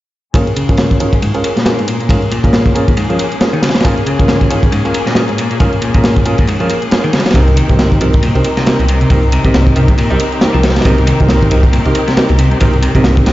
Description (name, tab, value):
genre	breakbeat, breaks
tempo	137 BPM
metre	4/4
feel	swing 57% on 16ths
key	unclear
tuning	A4 = 440 Hz
part	muted studio string section	sustained chords	0.3-13.3 s	C3 to Bb4	-21 LUFS	left 2 dB	sidechain pumping, low-pass filter
part	clean electric guitar	riff	0.3-13.3 s	Ab2 to G3	-18 LUFS	left 1 dB	vintage 12-bit sampler grit, low-pass filter, digital delay
part	dark grand piano	stabs	0.3-13.3 s	C4 to Bb4	-18 LUFS	right 1 dB	low-pass filter, digital delay
part	crunchy breakbeat drum kit	drums	0.3-13.3 s	kick drum, ride cymbal, snare drum	-13 LUFS	equal	none
part	electronic hi-hat	drums	0.3-13.3 s	none	-30 LUFS	right 1 dB	none
part	detuned saw bass	bass	7.3-13.3 s	C2	-12 LUFS	equal	none
room	light reverb, studio ambience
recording	played on a big sound system in a bare room, stone room reverb, nothing above 7.6 kHz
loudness	-9 LUFS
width	side -16 dB against mid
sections	0.3-13.3 A section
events	filter sweep on clean electric guitar 0.3-13.3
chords	0.3 Bbm7; 7.4 Cm7